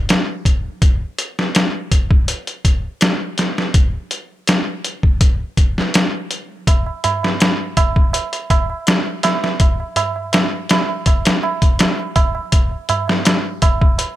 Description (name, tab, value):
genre	trip hop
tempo	82 BPM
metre	4/4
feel	straight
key	none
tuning	none
part	trip hop sampler-style drum kit	drums	0.1-14.2 s	hi-hat, kick drum, snare drum	-14 LUFS	equal	none
part	tabla	percussion	6.7-14.1 s	none	-21 LUFS	right 6 dB	none
room	digital ambience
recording	none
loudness	-15 LUFS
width	side -14 dB against mid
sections	0.0-14.2 A section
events	none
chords	none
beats	0.09 | 0.82 1.55 2.28 3.01 | 3.75 4.48 5.21 5.94 | 6.67 7.40 8.14 8.87 | 9.60 10.33 11.06 11.79 | 12.53 13.26 13.99